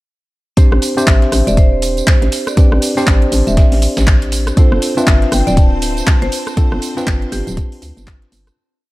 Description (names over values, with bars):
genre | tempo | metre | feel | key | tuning
deep house | 120 BPM | 4/4 | swing 60% on 16ths | A minor | A4 = 440 Hz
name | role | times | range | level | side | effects
vibraphone with medium mallets | melody | 0.6-8.0 s | C5 to A5 | -24 LUFS | right 1 dB | vintage 12-bit sampler grit, tape echo
tine electric piano | stabs | 0.6-8.5 s | C4 to C5 | -19 LUFS | left 1 dB | vintage 12-bit sampler grit, sidechain pumping, tape echo
deep house drum kit | drums | 0.6-8.6 s | handclaps, hi-hat, rim click, tambourine | -21 LUFS | right 1 dB | small room reverb
dusty soul sampler-style drum kit | drums | 0.6-8.6 s | hi-hat, snare drum | -31 LUFS | equal | sidechain pumping on hats, high-pass filter on hats, small room reverb, high-pass filter on snare, high-pass filter on room
electronic kick drum | drums | 0.6-8.2 s | none | -10 LUFS | equal | small room reverb
hollow knocking FM bass | bass | 0.7-8.5 s | D1 to D2 | -16 LUFS | equal | none
marimba with medium hard mallets | melody | 1.5-7.7 s | G4 to E5 | -25 LUFS | equal | tape echo
string machine, violins | texture | 4.6-8.6 s | C4 to C5 | -31 LUFS | left 1 dB | ensemble chorus, sidechain pumping
room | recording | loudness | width
digital ambience | none | -11 LUFS | side -19 dB against mid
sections
0.6-8.6 drop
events
drop 0.6-8.6; fade-out 5.9-8.6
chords
0.6 Am11; 4.6 G9sus4